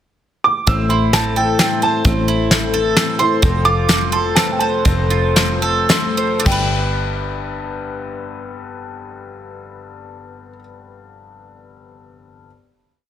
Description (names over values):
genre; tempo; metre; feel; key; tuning
indie folk with a building arrangement; 103-131 BPM; 3/4; straight; G mixolydian; A4 = 441 Hz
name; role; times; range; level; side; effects
warm upright piano; melody; 0.4-10.6 s; G5 to E6; -20 LUFS; right 3 dB; none
fingerpicked plugged-in steel-string acoustic guitar; accompaniment; 0.7-3.4 s; A2 to E4; -23 LUFS; left 2 dB; none
picked twelve-string acoustic guitar; accompaniment; 0.7-10.7 s; A2 to B4; -24 LUFS; left 6 dB; none
bowl-back mandolin; arpeggios; 0.7-10.6 s; C4 to C5; -22 LUFS; right 5 dB; none
picked electric bass; bass; 0.7-10.6 s; F1 to A1; -20 LUFS; equal; none
soft brush drum kit; drums; 0.7-6.6 s; crash cymbal, hi-hat, kick drum, snare drum; -18 LUFS; left 1 dB; none
bright concert grand piano; accompaniment; 3.4-12.5 s; F1 to C5; -28 LUFS; left 6 dB; none
room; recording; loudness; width
light reverb, small room ambience; dense, heavily limited modern master; -14 LUFS; side -10 dB against mid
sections
0.0-0.7 pickup bar; 0.7-6.5 pre-chorus; 6.5-10.0 final chord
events
slowing down 3.4-6.5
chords
0.0 N.C.; 0.7 Am; 3.4 F; 6.5 G